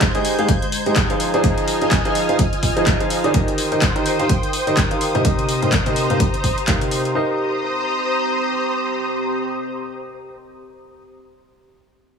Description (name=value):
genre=piano house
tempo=126 BPM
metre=4/4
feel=swing 58% on 16ths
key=C minor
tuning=A4 = 438 Hz
part: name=analog string pad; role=sustained chords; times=0.0-11.0 s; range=C5 to Ab6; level=-24 LUFS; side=equal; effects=ensemble chorus, sidechain pumping
part: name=clear concert grand piano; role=riff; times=0.0-11.0 s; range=C3 to F5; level=-20 LUFS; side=equal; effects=sidechain pumping, low-pass filter, tape echo
part: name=electronic kick drum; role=drums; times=0.0-6.8 s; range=none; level=-20 LUFS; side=equal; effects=none
part: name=house drum kit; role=drums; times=0.0-7.1 s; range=handclaps, hi-hat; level=-24 LUFS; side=left 1 dB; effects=none
part: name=warbly tape-like pad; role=texture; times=0.2-11.0 s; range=Ab3 to Bb5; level=-30 LUFS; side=right 1 dB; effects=chorus, built-in reverb, sidechain pumping
room=moderate digital room reverb, RT60 1.2 s, digital ambience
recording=none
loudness=-16 LUFS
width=side -6 dB against mid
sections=0.0-7.2 A section; 7.2-11.0 B section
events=none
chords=0.0 Abmaj7; 1.2 Fm7; 3.3 Cm7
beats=0.01 0.49 0.96 | 1.44 1.91 2.39 2.87 | 3.34 3.82 4.29 4.77 | 5.25 5.72 6.20 6.68 | 7.15 7.63 8.11 8.58 | 9.06 9.53 10.01 10.49